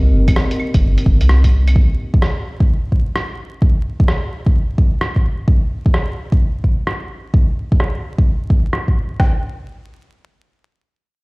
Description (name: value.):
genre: future garage.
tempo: 129 BPM.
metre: 4/4.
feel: swing 64% on 16ths.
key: C minor.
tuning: A4 = 439 Hz.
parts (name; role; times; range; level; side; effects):
dark analog pad; sustained chords; 0.0-1.8 s; C4 to Eb5; -25 LUFS; equal; chorus, sidechain pumping.
soft dub sub bass; bass; 0.0-1.7 s; G1 to C2; -12 LUFS; equal; tube saturation, sidechain pumping.
lo-fi sampler-style drum kit; drums; 0.3-8.8 s; claves, hi-hat, rim click; -24 LUFS; equal; low-pass filter on hats, low-pass filter on perc, low-pass filter on snare, low-pass filter on room.
organic electronic drum kit; drums; 0.3-9.3 s; kick drum, snare drum; -14 LUFS; equal; none.
room: little or no reverb.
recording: played on a big sound system in a bare room, stone room reverb, vinyl crackle.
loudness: -14 LUFS.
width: side -28 dB against mid.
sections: 0.0-9.2 A section; 9.2-11.2 B section.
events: filter sweep on drum 0.0-9.2; filter sweep on sub bass 0.0-1.8.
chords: 0.0 Cm7; 1.8 N.C..